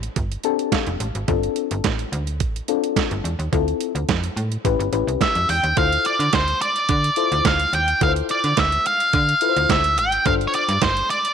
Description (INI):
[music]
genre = early-eighties boogie funk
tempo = 107 BPM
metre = 4/4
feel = straight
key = D dorian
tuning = A4 = 440 Hz
[part]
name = slap-like FM bass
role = bass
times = 0.0-11.0 s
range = F1 to D3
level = -24 LUFS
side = right 1 dB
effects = none
[part]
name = detuned 8-bit digital drum machine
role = drums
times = 0.0-11.3 s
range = handclaps, hi-hat, kick drum, snare drum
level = -24 LUFS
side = right 5 dB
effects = none
[part]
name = mellow FM electric piano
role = accompaniment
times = 0.4-11.1 s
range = C4 to A5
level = -25 LUFS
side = left 13 dB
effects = chorus, tremolo
[part]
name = octave-fuzz lead guitar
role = melody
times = 5.2-11.3 s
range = C5 to G5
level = -18 LUFS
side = equal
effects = distortion, slapback echo
[sound]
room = light reverb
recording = 1960s-style stereo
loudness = -18 LUFS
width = side -8 dB against mid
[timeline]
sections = 0.0-5.8 A section; 5.8-11.3 B section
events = FM electric piano fill 0.2-1.3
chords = 0.0 F6; 1.3 G9sus4; 3.5 Dm9; 4.7 A9; 5.8 Dm7; 10.3 G7sus4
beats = 0.16 0.72 | 1.28 1.85 2.41 2.97 | 3.53 4.09 4.65 5.21 | 5.77 6.33 6.89 7.45 | 8.01 8.57 9.14 9.70 | 10.26 10.82